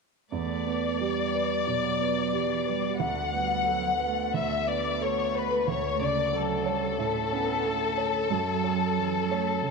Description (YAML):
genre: neoclassical piano and strings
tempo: 90 BPM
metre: 4/4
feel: rubato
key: E dorian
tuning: A4 = 440 Hz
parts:
  - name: rich chamber violin section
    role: melody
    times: 0.3-9.7 s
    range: A4 to F#5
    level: -28 LUFS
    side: left 7 dB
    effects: tape echo
  - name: warm cello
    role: second line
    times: 0.3-9.7 s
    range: E3 to B3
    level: -34 LUFS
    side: right 10 dB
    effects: none
  - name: warm concert grand piano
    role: accompaniment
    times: 0.3-9.7 s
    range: D2 to C#5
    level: -30 LUFS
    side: right 8 dB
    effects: none
room: moderate echo chamber reverb, RT60 1.8 s, small room ambience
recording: 1960s-style stereo with parts hard left and right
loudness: -25 LUFS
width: side -4 dB against mid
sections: 0.3-9.7 A section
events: none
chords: 0.3 Em7; 3.0 Bm7/D; 5.7 Dmaj7(no3); 8.3 F#m7